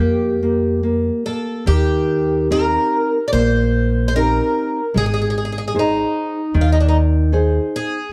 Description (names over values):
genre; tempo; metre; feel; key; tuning
fado-style ballad; 70-78 BPM; 4/4; rubato; Eb major; A4 = 441 Hz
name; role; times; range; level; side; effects
picked twelve-string acoustic guitar; melody; 0.0-8.1 s; D4 to D5; -23 LUFS; equal; none
nylon-string guitar; accompaniment; 0.0-8.0 s; Eb3 to C5; -22 LUFS; equal; none
upright bass; bass; 0.0-7.6 s; Ab1 to F2; -21 LUFS; equal; none
room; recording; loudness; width
light reverb; dark, warm production; -18 LUFS; mono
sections
0.0-1.7 A section; 1.7-8.1 B section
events
none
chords
0.0 Bb5; 1.7 Eb6; 5.0 Ab